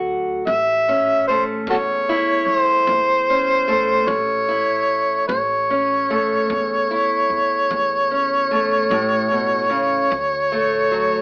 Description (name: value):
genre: acoustic country blues, solo or duo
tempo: 50 BPM (dotted quarters)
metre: 12/8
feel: straight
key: unclear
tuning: A4 = 440 Hz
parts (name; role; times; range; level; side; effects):
- fingerpicked steel-string acoustic guitar; accompaniment; 0.0-11.2 s; D2 to F#4; -26 LUFS; equal; none
- upright bass; bass; 0.0-11.2 s; A1 to E2; -38 LUFS; equal; none
- overdriven harmonica; melody; 0.5-11.2 s; F#4 to E5; -20 LUFS; equal; none
- kick drum; drums; 0.5-10.3 s; none; -41 LUFS; equal; none
room: moderate studio reverb, RT60 0.7 s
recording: heard from further back in the room, AM radio sound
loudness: -19 LUFS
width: mono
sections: 0.0-11.2 A section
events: none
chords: 0.5 A; 10.1 D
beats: | 0.47 1.68 2.88 4.09 | 5.29 6.50 7.70 8.91 | 10.11